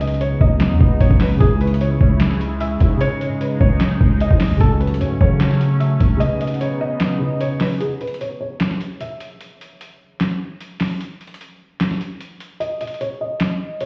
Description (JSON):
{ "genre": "hip hop, trap", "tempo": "150 BPM", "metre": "4/4", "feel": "half-time", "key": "unclear", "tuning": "A4 = 439 Hz", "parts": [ { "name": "felt-muted upright piano", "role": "melody", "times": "0.0-9.2, 12.6-13.9 s", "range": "G#4 to E5", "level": "-28 LUFS", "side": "equal", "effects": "low-pass filter" }, { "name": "dark grand piano", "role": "accompaniment", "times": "0.0-7.8 s", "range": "C#3 to B4", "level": "-26 LUFS", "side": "equal", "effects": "none" }, { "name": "sweeping resonant pad", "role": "sustained chords", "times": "0.0-7.8 s", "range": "C#3 to E4", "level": "-28 LUFS", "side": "equal", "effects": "chorus" }, { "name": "growling 808-style bass", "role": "bass", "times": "0.0-6.2 s", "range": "B1 to C#3", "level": "-20 LUFS", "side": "equal", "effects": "none" }, { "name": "dusty soul sampler-style drum kit", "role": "drums", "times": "0.0-13.9 s", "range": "handclaps, hi-hat, kick drum, snare drum", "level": "-20 LUFS", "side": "equal", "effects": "overdrive" } ], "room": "digital ambience", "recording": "heard muffled through a wall, stone room reverb, EQ", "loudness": "-18 LUFS", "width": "mono", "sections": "0.0-7.8 A section; 7.8-13.9 B section", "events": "break 6.2-7.8, 7.8-13.9; filter sweep on felt piano 7.8-13.9", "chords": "0.0 B/C#; 1.4 C#m; 3.0 G#sus4/C#; 4.6 F#m/C#; 6.2 B/C#; 7.8 N.C." }